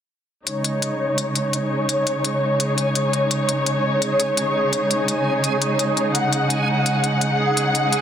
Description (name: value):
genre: half-time drum and bass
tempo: 169 BPM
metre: 4/4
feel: half-time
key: unclear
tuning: A4 = 440 Hz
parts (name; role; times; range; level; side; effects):
- dark studio string section; sustained chords; 0.5-8.0 s; C#3 to F#5; -19 LUFS; equal; low-pass filter
- electronic hi-hat; drums; 0.5-8.0 s; none; -23 LUFS; left 3 dB; none
- backwards swelling texture; texture; 1.6-8.0 s; G#4; -28 LUFS; right 5 dB; built-in reverb
room: moderate lush hall reverb, RT60 2.0 s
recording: dense, heavily limited modern master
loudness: -18 LUFS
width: side -9 dB against mid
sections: 0.5-8.0 A section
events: filter sweep on string section 0.5-8.0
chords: 0.5 C#5